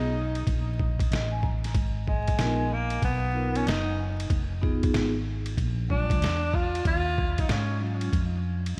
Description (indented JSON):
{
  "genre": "hip hop, jazz-hop",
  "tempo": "94 BPM",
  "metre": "4/4",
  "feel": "swing 65% on 16ths",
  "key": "G# dorian",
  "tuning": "A4 = 444 Hz",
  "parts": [
    { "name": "breathy tenor saxophone", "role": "melody", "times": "0.0-7.8 s", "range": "G#3 to E#4", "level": "-34 LUFS", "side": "equal", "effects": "tape echo" },
    { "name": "vibraphone with soft mallets", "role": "accompaniment", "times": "0.0-8.1 s", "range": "F#3 to A#5", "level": "-35 LUFS", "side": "equal", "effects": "none" },
    { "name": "woody fretless electric bass", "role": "bass", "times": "0.0-8.8 s", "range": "F1 to G#2", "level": "-31 LUFS", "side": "equal", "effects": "none" },
    { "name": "trip hop sampler-style drum kit", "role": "drums", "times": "0.4-8.8 s", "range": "hi-hat, kick drum, ride cymbal, snare drum", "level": "-31 LUFS", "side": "equal", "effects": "none" }
  ],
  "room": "light reverb, digital ambience",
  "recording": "vinyl crackle",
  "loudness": "-27 LUFS",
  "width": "mono",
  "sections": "0.0-1.8 A section; 1.8-8.8 B section",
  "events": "vibraphone fill 0.8-1.8; tenor saxophone solo 1.8-8.8",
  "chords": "0.0 G#madd9; 1.8 G#m69; 4.3 Fm7b5; 5.6 A#7b13; 6.9 D#m11"
}